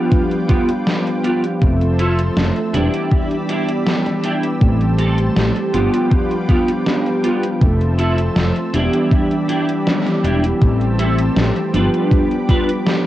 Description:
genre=vaporwave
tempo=80 BPM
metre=4/4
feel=straight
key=A minor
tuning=A4 = 440 Hz
part: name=mellow synth brass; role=accompaniment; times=0.0-13.1 s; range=E3 to E5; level=-19 LUFS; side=equal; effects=lush chorus, cassette tape, analog delay
part: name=lush unison pad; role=sustained chords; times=0.0-13.1 s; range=F3 to E6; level=-27 LUFS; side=equal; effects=chorus, cassette tape
part: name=clean electric guitar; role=riff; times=0.0-12.7 s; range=B3 to B4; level=-22 LUFS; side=right 1 dB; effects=ensemble chorus, cassette tape, analog delay
part: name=electronic kick drum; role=drums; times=0.1-12.6 s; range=none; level=-15 LUFS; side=equal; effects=overdrive, vintage 12-bit sampler grit, cassette tape
part: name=gated 80s digital drum machine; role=drums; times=0.1-13.0 s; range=hi-hat, snare drum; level=-21 LUFS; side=equal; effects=gated reverb, gated reverb snare, overdrive, vintage 12-bit sampler grit, cassette tape
part: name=mellow fretless electric bass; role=bass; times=1.6-11.9 s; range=E1 to A1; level=-18 LUFS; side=equal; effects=tube saturation
room=light reverb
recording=home recording on cassette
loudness=-14 LUFS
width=side -14 dB against mid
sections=0.0-10.6 A section; 10.6-13.1 B section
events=band accent 9.9-10.2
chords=0.0 G7; 1.6 Fmaj7; 2.7 Em7; 4.6 Am7; 5.7 G7; 7.6 Fmaj7; 8.7 Em7; 10.6 Am7; 11.7 G7

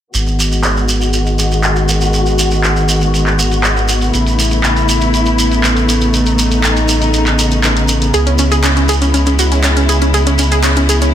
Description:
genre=progressive house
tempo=120 BPM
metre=4/4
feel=straight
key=unclear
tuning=A4 = 440 Hz
part: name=muted studio string section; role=sustained chords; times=0.1-11.1 s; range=C#3 to F#4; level=-16 LUFS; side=left 1 dB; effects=low-pass filter
part: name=saturated sub bass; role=bass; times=0.1-11.1 s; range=G#1 to C#2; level=-15 LUFS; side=equal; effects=tube saturation
part: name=house drum kit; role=drums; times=0.1-11.1 s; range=handclaps, hi-hat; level=-18 LUFS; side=equal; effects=low-pass filter on hats, low-pass filter on snare, low-pass filter on room
part: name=shekere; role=percussion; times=0.1-11.1 s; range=none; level=-20 LUFS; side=right 3 dB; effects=none
part: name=wide unison pluck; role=arpeggios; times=8.1-11.1 s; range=C#4 to G#4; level=-15 LUFS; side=right 1 dB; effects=ping-pong delay
room=light reverb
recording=dense, heavily limited modern master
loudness=-10 LUFS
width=side -10 dB against mid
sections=0.1-11.1 A section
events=filter sweep on drum 0.1-11.1; filter sweep on string section 0.1-11.1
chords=0.1 G#m7; 4.1 Aadd9; 8.1 C#m7

